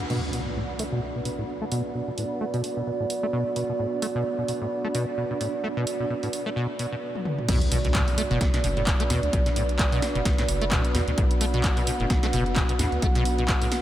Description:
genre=acid house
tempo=130 BPM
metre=4/4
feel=swing 56% on 16ths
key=B minor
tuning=A4 = 435 Hz
part: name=dark analog pad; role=sustained chords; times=0.0-13.8 s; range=B3 to F#5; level=-30 LUFS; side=right 2 dB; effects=chorus, sidechain pumping
part: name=acid bass, saw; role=riff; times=0.0-13.7 s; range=A2 to A3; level=-30 LUFS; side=equal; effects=analog chorus, sidechain pumping, analog delay
part: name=punchy analog drum machine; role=drums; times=0.0-13.8 s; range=crash cymbal, handclaps, hi-hat, snare drum, toms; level=-31 LUFS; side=equal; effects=none
part: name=granular cloud pad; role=texture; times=0.0-13.8 s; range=D4 to B5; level=-35 LUFS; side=equal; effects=built-in reverb, analog chorus, sidechain pumping
part: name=impact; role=sound effects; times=0.1-1.9, 7.5-9.3 s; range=none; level=-34 LUFS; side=equal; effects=none
part: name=round analog bass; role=bass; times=7.5-13.6 s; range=F#1 to E2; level=-28 LUFS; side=equal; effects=sidechain pumping
part: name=electronic kick drum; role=drums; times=7.5-13.6 s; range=none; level=-25 LUFS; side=equal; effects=none
room=moderate huge ambient reverb, RT60 8.4 s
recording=dreamy mix soaked in reverb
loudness=-23 LUFS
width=side -12 dB against mid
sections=0.1-7.5 A section; 7.5-13.8 B section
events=impact 0.1-1.9, 7.5-9.3; drum fill 7.1-7.5; drop 7.5-13.8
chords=0.1 Bm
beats=| 0.10 0.56 1.02 1.49 | 1.95 2.41 2.87 3.33 | 3.79 4.25 4.72 5.18 | 5.64 6.10 6.56 7.02 | 7.49 7.95 8.41 8.87 | 9.33 9.79 10.25 10.72 | 11.18 11.64 12.10 12.56 | 13.02 13.48

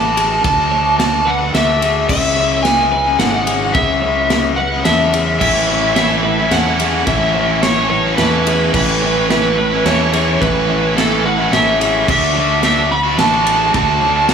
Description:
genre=post-rock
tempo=108 BPM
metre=3/4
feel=straight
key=A major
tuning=A4 = 436 Hz
part: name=overdriven slide guitar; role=melody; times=0.0-14.3 s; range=A4 to B5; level=-16 LUFS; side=equal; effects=digital delay
part: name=twelve-string electric guitar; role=arpeggios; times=0.0-14.3 s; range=G#4 to C#5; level=-27 LUFS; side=right 5 dB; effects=digital delay
part: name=overdriven semi-hollow guitar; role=riff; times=0.0-14.3 s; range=A2 to A4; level=-20 LUFS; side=left 8 dB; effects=none
part: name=growling fingered electric bass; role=bass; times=0.0-14.3 s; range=G#1 to E2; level=-21 LUFS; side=right 1 dB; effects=overdrive
part: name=big rock drum kit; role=drums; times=0.2-14.3 s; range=crash cymbal, kick drum, ride cymbal, snare drum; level=-20 LUFS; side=equal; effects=none
part: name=tight distorted guitar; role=riff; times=5.4-14.3 s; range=A2 to F#4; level=-19 LUFS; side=right 14 dB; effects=distortion
room=light reverb, small room ambience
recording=studio ambience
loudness=-12 LUFS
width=side -7 dB against mid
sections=0.0-14.3 A section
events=none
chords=0.0 Dadd9; 2.1 C#m; 5.4 Aadd9; 12.1 Dadd9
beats=| 0.44 0.99 1.54 | 2.10 2.65 3.20 | 3.75 4.30 4.86 | 5.41 5.97 6.52 | 7.08 7.63 8.19 | 8.74 9.29 9.85 | 10.41 10.96 11.52 | 12.07 12.63 13.18 | 13.74 14.29

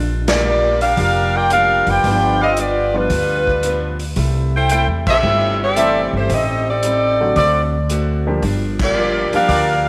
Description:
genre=jazz, big band swing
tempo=113 BPM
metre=4/4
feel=swing 69% on 8ths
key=G minor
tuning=A4 = 445 Hz
part: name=picked steel-string acoustic guitar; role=accompaniment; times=0.0-9.9 s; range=G2 to F#4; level=-30 LUFS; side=equal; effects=none
part: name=upright bass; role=bass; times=0.0-9.9 s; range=F1 to E2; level=-23 LUFS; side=equal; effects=none
part: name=bright saxophone section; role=melody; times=0.3-9.8 s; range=G3 to G5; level=-19 LUFS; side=equal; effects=slapback echo
part: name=swinging big-band drum kit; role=drums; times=0.3-9.7 s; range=crash cymbal, hi-hat, kick drum, ride cymbal, snare drum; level=-27 LUFS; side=equal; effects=none
part: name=clear trumpet section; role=stabs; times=1.0-9.7 s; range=F4 to F5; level=-24 LUFS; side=equal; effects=none
part: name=warm concert grand piano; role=accompaniment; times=1.5-9.5 s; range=D3 to G4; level=-28 LUFS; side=equal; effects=none
room=moderate plate reverb, RT60 2.8 s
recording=none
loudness=-17 LUFS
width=mono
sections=0.0-9.9 A section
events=band accent 0.2, 5.0, 8.7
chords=0.0 Bb6; 2.0 G7; 4.2 C6; 6.3 Am7b5; 7.4 D7; 8.4 Gm7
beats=0.45 0.98 1.51 | 2.05 2.58 3.11 3.64 | 4.17 4.71 5.24 5.77 | 6.30 6.83 7.37 7.90 | 8.43 8.96 9.49

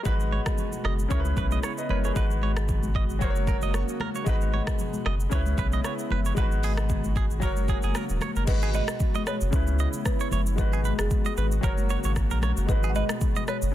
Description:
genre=afrobeats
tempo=114 BPM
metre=4/4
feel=swing 55% on 16ths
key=G# minor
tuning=A4 = 442 Hz
part: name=clear concert grand piano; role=accompaniment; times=0.0-13.7 s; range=C#3 to D#5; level=-34 LUFS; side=left 2 dB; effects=none
part: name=warm analog pad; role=sustained chords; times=0.1-13.7 s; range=B2 to F#4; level=-36 LUFS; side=equal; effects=chorus
part: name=direct-recorded clean electric guitar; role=riff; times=0.1-13.6 s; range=G#4 to D#5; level=-35 LUFS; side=right 9 dB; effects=digital delay
part: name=warm sub bass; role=bass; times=0.1-13.7 s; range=D#1 to C#2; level=-26 LUFS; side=equal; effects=none
part: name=afro-pop drum kit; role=drums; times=0.1-13.7 s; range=crash cymbal, hi-hat, kick drum, rim click, shaker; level=-28 LUFS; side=equal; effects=soft clipping on snare
part: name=congas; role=percussion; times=0.1-13.5 s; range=none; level=-36 LUFS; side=left 5 dB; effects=none
part: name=folk marimba with medium mallets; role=melody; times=8.5-13.7 s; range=G#4 to F#5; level=-34 LUFS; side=right 3 dB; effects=digital delay
room=digital ambience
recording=dense, heavily limited modern master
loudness=-23 LUFS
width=side -13 dB against mid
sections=0.1-8.5 A section; 8.5-13.7 B section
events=none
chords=0.1 G#m7; 1.1 C#m7; 2.2 G#m7; 3.2 F#; 4.3 G#m7; 5.3 C#m7; 6.4 G#m7; 7.4 F#; 8.5 G#m7; 9.5 C#m7; 10.6 G#m7; 11.6 F#; 12.7 G#m7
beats=| 0.06 0.58 1.11 1.63 | 2.16 2.69 3.21 3.74 | 4.27 4.79 5.32 5.84 | 6.37 6.90 7.42 7.95 | 8.48 9.00 9.53 10.05 | 10.58 11.11 11.63 12.16 | 12.69 13.21 13.74

